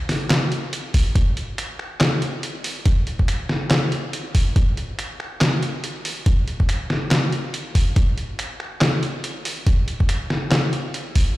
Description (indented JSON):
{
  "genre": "dubstep",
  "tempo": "141 BPM",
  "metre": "4/4",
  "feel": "swing 58% on 16ths, half-time",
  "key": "none",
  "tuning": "none",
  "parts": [
    { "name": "trip hop sampler-style drum kit", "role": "drums", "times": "0.1-11.3 s", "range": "finger snaps, handclaps, hi-hat, snare drum", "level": "-22 LUFS", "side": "equal", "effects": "none" },
    { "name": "electronic kick drum", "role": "drums", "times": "0.9-11.3 s", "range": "none", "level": "-17 LUFS", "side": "equal", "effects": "none" }
  ],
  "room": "light reverb",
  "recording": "played on a big sound system in a bare room, stone room reverb, faint mains hum",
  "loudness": "-19 LUFS",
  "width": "side -17 dB against mid",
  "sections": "0.0-11.4 A section",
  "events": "none",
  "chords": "none"
}